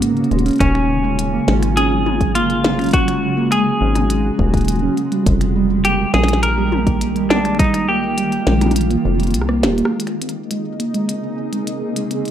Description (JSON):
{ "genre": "IDM", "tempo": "103 BPM", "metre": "4/4", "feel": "straight", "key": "Bb minor", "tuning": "A4 = 440 Hz", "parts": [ { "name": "granular cloud pad", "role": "sustained chords", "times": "0.0-12.3 s", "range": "Db3 to Ab4", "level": "-23 LUFS", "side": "equal", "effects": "built-in reverb, vintage 12-bit sampler grit" }, { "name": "harp-like synth pluck", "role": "arpeggios", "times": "0.0-12.3 s", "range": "G3 to G4", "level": "-20 LUFS", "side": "right 3 dB", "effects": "chorus, tape echo" }, { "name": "deep acid bass", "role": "bass", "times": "0.0-9.8 s", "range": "Eb1 to Ab2", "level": "-20 LUFS", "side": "equal", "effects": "none" }, { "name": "glitchy drum kit", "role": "drums", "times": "0.0-12.3 s", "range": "finger snaps, hi-hat, rim click, snare drum, toms", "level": "-22 LUFS", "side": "left 2 dB", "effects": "small room ambience" }, { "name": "semi-hollow electric guitar", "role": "melody", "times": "0.6-8.7 s", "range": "Db4 to Bb4", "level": "-20 LUFS", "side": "equal", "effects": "tape echo" }, { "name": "electronic kick drum", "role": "drums", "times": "0.6-7.7 s", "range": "none", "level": "-18 LUFS", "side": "equal", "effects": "small room ambience" }, { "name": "bubbling stepped-filter texture", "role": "texture", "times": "10.3-12.3 s", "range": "Eb4 to Eb5", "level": "-31 LUFS", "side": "left 2 dB", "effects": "chorus, built-in reverb" } ], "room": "light reverb", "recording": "rough home demo mix", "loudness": "-15 LUFS", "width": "side -10 dB against mid", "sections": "0.0-9.9 A section; 9.9-12.3 B section", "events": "kick drops out 8.8-9.9; drum fill 9.3-9.9", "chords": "0.3 Ebm11; 5.0 Fm11; 9.9 Bbm11", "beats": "0.02 | 0.60 1.19 1.77 2.35 | 2.94 3.52 4.10 4.68 | 5.26 5.85 6.43 7.01 | 7.59 8.18 8.76 9.34 | 9.93 10.51 11.09 11.67 | 12.26" }